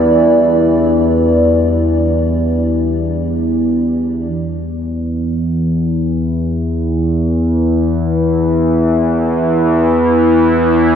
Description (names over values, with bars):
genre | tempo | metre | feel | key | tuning
dark ambient drone | free time | none | none | unclear | A4 = 439 Hz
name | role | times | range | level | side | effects
dark analog pad | sustained chords | 0.0-4.3 s | E3 to D5 | -17 LUFS | right 1 dB | chorus
analog drone | drone | 0.0-11.0 s | E2 to E3 | -12 LUFS | equal | chorus
room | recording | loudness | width
wet cathedral reverb, RT60 4.8 s | cassette tape | -12 LUFS | side -8 dB against mid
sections
0.0-4.3 A section; 4.3-11.0 A section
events
none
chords
0.0 C/E (rootless); 4.3 N.C.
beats
free time